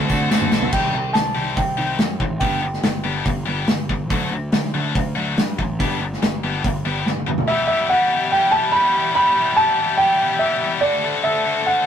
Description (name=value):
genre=indie rock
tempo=142 BPM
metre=4/4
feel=straight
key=unclear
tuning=A4 = 437 Hz
part: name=warm upright piano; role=melody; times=0.0-3.8, 7.5-11.9 s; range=D5 to B5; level=-18 LUFS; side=right 1 dB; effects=none
part: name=sweeping resonant pad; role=sustained chords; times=0.0-0.7, 7.5-11.9 s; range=G4 to C6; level=-31 LUFS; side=left 1 dB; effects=chorus
part: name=heavy high-gain guitar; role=riff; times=0.0-11.9 s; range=E2 to G4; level=-22 LUFS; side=left 6 dB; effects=distortion
part: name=twelve-string electric guitar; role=riff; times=0.0-7.5 s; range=C3 to F#4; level=-28 LUFS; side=right 3 dB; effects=none
part: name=fuzz picked electric bass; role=bass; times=0.0-7.4 s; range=G1 to G2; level=-26 LUFS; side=equal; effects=overdrive
part: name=loose indie drum kit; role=drums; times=0.1-7.5 s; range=crash cymbal, hi-hat, kick drum, snare drum, toms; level=-22 LUFS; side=equal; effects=none
part: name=tambourine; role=percussion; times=0.1-0.6 s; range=none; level=-37 LUFS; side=right 5 dB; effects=none
room=moderate booth ambience, RT60 0.2 s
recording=rough rehearsal-room recording, warm saturation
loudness=-17 LUFS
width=side -8 dB against mid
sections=0.7-7.5 A section; 7.5-11.9 B section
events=drum fill 0.0-0.7, 7.1-7.5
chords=0.0 D7; 0.7 Cm6; 2.4 G; 4.1 D; 5.8 G; 7.5 Em; 10.8 D7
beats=0.30 | 0.72 1.15 1.57 1.99 | 2.41 2.83 3.26 3.68 | 4.10 4.53 4.95 5.37 | 5.80 6.22 6.64 7.06 | 7.48 7.90 8.32 8.74 | 9.16 9.58 10.00 10.42 | 10.84 11.25 11.67